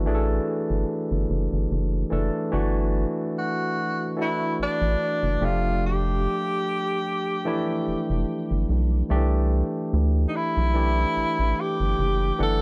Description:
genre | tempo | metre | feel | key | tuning
R&B, neo-soul | 73 BPM | 4/4 | swing 55% on 16ths | unclear | A4 = 440 Hz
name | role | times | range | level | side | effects
barky tine electric piano | accompaniment | 0.0-12.6 s | D3 to F#5 | -29 LUFS | equal | none
rubbery square bass | bass | 0.0-12.6 s | F1 to D2 | -26 LUFS | equal | none
clear tenor saxophone | melody | 3.4-12.6 s | D4 to A4 | -28 LUFS | equal | none
room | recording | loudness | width
light reverb, small room reverb | dark, warm production | -25 LUFS | mono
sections
0.0-2.5 A section; 2.5-12.6 B section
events
none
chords
0.0 Gsus2; 5.4 Fmaj9; 9.1 Cmaj9

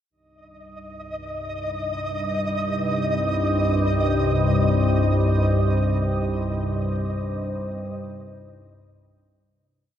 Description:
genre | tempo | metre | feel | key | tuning
dark ambient drone | free time | none | none | unclear | A4 = 440 Hz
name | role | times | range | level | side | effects
dark analog pad | sustained chords | 0.1-9.9 s | Eb4 to Eb5 | -32 LUFS | right 1 dB | wide subtle chorus
organ-like drone | drone | 1.7-10.0 s | C2 to G2 | -22 LUFS | equal | ensemble chorus, built-in reverb, phaser
flickering grainy texture | texture | 0.8-9.9 s | Eb5 | -28 LUFS | equal | built-in reverb
room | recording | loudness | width
wet cathedral reverb, RT60 5.1 s | none | -21 LUFS | side -10 dB against mid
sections
0.1-9.9 A section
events
fade-in on analog synth pad 0.1-9.9; fade-out 5.0-9.9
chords
0.1 Cm

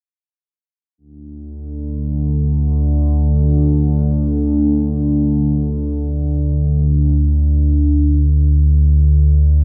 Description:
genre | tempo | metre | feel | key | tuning
ambient | free time | none | none | unclear | A4 = 440 Hz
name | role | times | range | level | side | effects
analog drone | drone | 1.3-9.6 s | D2 to D3 | -16 LUFS | equal | chorus, phaser
room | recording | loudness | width
wet echo chamber reverb, RT60 2.8 s | none | -16 LUFS | mono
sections
1.0-9.6 A section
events
none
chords
none

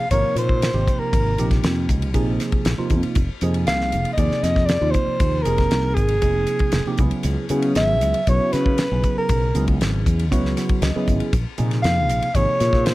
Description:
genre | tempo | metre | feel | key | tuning
electric jazz fusion | 118 BPM | 4/4 | straight | unclear | A4 = 440 Hz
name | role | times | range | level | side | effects
breathy soprano saxophone | melody | 0.0-12.9 s | Ab4 to F5 | -22 LUFS | equal | none
tine electric piano | accompaniment | 0.0-12.9 s | C3 to Gb5 | -24 LUFS | right 2 dB | overdrive, phaser
fretless electric bass | bass | 0.1-12.9 s | F1 to Db3 | -22 LUFS | equal | none
damped 70s drum kit | drums | 0.1-12.9 s | hi-hat, kick drum, ride cymbal, snare drum | -23 LUFS | equal | none
room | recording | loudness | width
little or no reverb | none | -17 LUFS | side -18 dB against mid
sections
0.0-12.9 A section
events
tine electric piano fill 10.3-11.3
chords
0.0 Bb9sus4; 3.2 Fm11; 7.0 Dbm11; 11.3 Bbm11

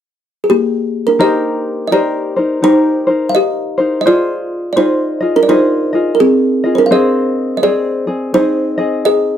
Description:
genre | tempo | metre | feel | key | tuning
Hawaiian | 84 BPM | 4/4 | swing 62% on 8ths | Eb major | A4 = 440 Hz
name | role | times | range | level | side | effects
kalimba | melody | 0.4-9.4 s | Bb3 to F5 | -13 LUFS | right 1 dB | none
tenor ukulele | accompaniment | 1.2-9.4 s | C4 to Eb5 | -16 LUFS | left 2 dB | none
room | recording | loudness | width
little or no reverb | dry, close 1970s-style studio recording | -11 LUFS | side -10 dB against mid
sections
0.0-1.2 A section; 1.2-9.4 B section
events
none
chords
0.0 Bb5; 1.2 Eb6; 4.0 Fm7; 6.9 Ab

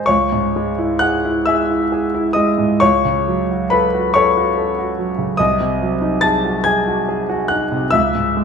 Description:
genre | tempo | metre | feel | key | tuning
classical, romantic nocturne for solo piano | 41-48 BPM (dotted quarters) | 12/8 | rubato | C# minor | A4 = 438 Hz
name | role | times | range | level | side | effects
warm concert grand piano | solo | 0.0-8.4 s | B#1 to A6 | -14 LUFS | equal | none
room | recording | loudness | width
wet recital hall reverb, RT60 1.6 s | none | -14 LUFS | side -6 dB against mid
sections
0.1-8.4 A section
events
none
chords
0.1 C#m; 2.8 F#m/C#; 5.4 G#7/B#; 7.9 C#m

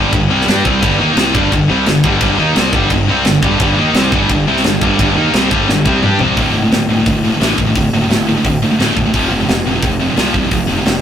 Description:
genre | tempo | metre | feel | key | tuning
heavy metal | 173 BPM | 4/4 | straight | D minor | A4 = 440 Hz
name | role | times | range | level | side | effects
heavy high-gain guitar | riff | 0.0-6.4 s | G2 to G4 | -19 LUFS | left 1 dB | distortion
scooped high-gain guitar | riff | 0.0-11.0 s | D2 to G4 | -16 LUFS | left 3 dB | distortion
scooped high-gain guitar | riff | 0.0-11.0 s | D2 to G4 | -17 LUFS | right 4 dB | distortion
fuzz fingered electric bass | bass | 0.0-11.0 s | D1 to G2 | -18 LUFS | equal | overdrive
tight metal drum kit | drums | 0.1-10.9 s | crash cymbal, hi-hat, kick drum, snare drum, toms | -17 LUFS | equal | none
room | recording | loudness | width
moderate booth ambience, RT60 0.2 s | rough rehearsal-room recording, tube saturation | -11 LUFS | side -9 dB against mid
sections
0.0-6.4 A section; 6.4-11.0 B section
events
drum fill 5.7-6.4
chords
0.0 G5; 6.4 D5; 9.1 F5

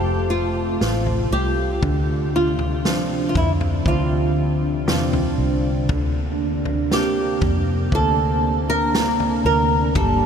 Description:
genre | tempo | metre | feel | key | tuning
pop ballad | 59 BPM | 4/4 | straight | unclear | A4 = 437 Hz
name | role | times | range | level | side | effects
flamenco guitar | melody | 0.0-10.3 s | E4 to Bb4 | -23 LUFS | equal | wide subtle chorus, ping-pong delay
clear concert grand piano | accompaniment | 0.0-10.3 s | D3 to C5 | -27 LUFS | right 4 dB | analog chorus
glassy FM pad | sustained chords | 0.0-10.3 s | C3 to G4 | -24 LUFS | equal | ensemble chorus, built-in reverb
vintage muted fingered electric bass | bass | 0.0-10.3 s | F1 to F2 | -23 LUFS | equal | none
natural country drum kit | drums | 0.8-10.2 s | kick drum, snare drum, toms | -25 LUFS | left 1 dB | none
room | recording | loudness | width
moderate huge ambient reverb, RT60 6.5 s | dreamy mix soaked in reverb | -18 LUFS | side -7 dB against mid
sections
0.0-10.3 A section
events
none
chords
0.0 F; 1.8 Dm7; 5.9 Bbadd9/D

